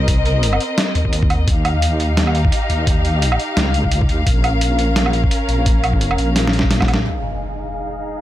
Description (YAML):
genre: half-time drum and bass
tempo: 172 BPM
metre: 4/4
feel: swing 56% on 16ths, half-time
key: F minor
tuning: A4 = 439 Hz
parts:
  - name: dark studio string section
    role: sustained chords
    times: 0.0-8.2 s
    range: C4 to F5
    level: -22 LUFS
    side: left 1 dB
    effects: vintage 12-bit sampler grit, sidechain pumping, low-pass filter
  - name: deep soft wobble bass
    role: bass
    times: 0.0-7.0 s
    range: Bb1 to Eb2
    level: -18 LUFS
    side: equal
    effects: chorus, tube saturation
  - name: boom bap sampler-style drum kit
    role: drums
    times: 0.1-7.0 s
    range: hi-hat, snare drum, woodblock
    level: -20 LUFS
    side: right 1 dB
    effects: none
  - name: electronic kick drum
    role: drums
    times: 0.1-6.9 s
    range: none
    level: -18 LUFS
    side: equal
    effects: none
  - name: impact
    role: sound effects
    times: 7.1-8.2 s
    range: none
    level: -27 LUFS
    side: equal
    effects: none
room: light reverb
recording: none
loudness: -15 LUFS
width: side -13 dB against mid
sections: 0.0-7.1 A section; 7.1-8.2 B section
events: drop 0.0-7.1; drum fill 6.4-7.1; impact 7.1-8.2; filter sweep on string section 7.1-8.2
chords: 0.0 Cm7; 1.5 Ebadd9; 4.3 Bbm; 7.1 Fm7